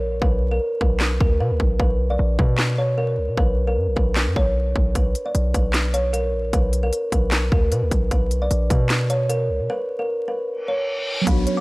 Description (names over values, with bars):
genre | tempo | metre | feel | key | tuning
hip hop, trap | 152 BPM | 4/4 | half-time | B harmonic minor | A4 = 440 Hz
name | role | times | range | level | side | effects
hard-hitting 808-style bass | bass | 0.0-11.5 s | A#1 to B2 | -21 LUFS | equal | none
kalimba | melody | 0.2-11.6 s | A#4 to D6 | -24 LUFS | equal | none
trap drum kit | drums | 0.2-11.6 s | handclaps, hi-hat, kick drum, snare drum | -21 LUFS | equal | none
reverse cymbal and downlifter | sound effects | 10.6-11.6 s | none | -28 LUFS | left 1 dB | none
mellow tine electric piano | accompaniment | 11.2-11.6 s | F#3 to F#4 | -21 LUFS | right 2 dB | medium stereo tremolo
dark analog pad | sustained chords | 11.3-11.6 s | none | barely audible | none | none
soft octave-layered synth lead | second line | 11.5-11.6 s | C#5 | -24 LUFS | equal | chorus, phaser
room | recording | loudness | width
little or no reverb | vinyl crackle | -18 LUFS | side -23 dB against mid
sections
0.0-11.3 A section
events
break 0.0-5.0, 9.7-11.3; reverse cymbal 10.6-11.3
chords
0.0 Bm; 1.8 Bsus2; 5.0 N.C.; 8.1 Bsus2